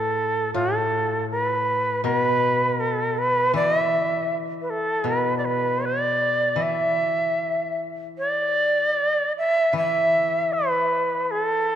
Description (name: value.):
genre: japanese traditional, Japanese chamber music.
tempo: 79 BPM.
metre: 4/4.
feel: rubato.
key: unclear.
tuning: A4 = 441 Hz.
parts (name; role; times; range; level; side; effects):
bright reedy shakuhachi; melody; 0.0-11.8 s; A4 to E5; -21 LUFS; right 1 dB; none.
koto; accompaniment; 0.0-11.8 s; A2 to E3; -29 LUFS; left 4 dB; none.
room: wet church reverb, RT60 2.6 s.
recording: dark, warm production.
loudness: -20 LUFS.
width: side -10 dB against mid.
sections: 0.0-11.8 A section.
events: none.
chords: none.